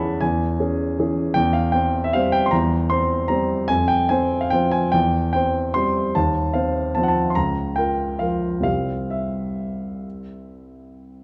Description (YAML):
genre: classical, piano waltz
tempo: 126-164 BPM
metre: 3/4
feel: rubato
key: unclear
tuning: A4 = 441 Hz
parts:
  - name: warm grand piano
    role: solo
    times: 0.0-11.2 s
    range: C2 to C6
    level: -22 LUFS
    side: equal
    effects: none
room: moderate recital hall reverb, RT60 1.6 s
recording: dark, warm production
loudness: -21 LUFS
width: mono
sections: 0.0-11.2 A section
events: none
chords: 0.0 C#m/E; 1.4 C/E; 3.7 F5; 4.9 C/E; 6.2 F7/Eb; 7.4 Bbm/Db; 8.7 C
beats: | 0.21 0.59 0.98 | 1.35 1.74 2.15 | 2.53 2.91 3.30 | 3.70 4.11 4.53 | 4.94 5.34 5.75 | 6.16 6.54 6.96 | 7.36 7.76 8.20 | 8.65 9.12 9.59 | 10.04 10.50 10.96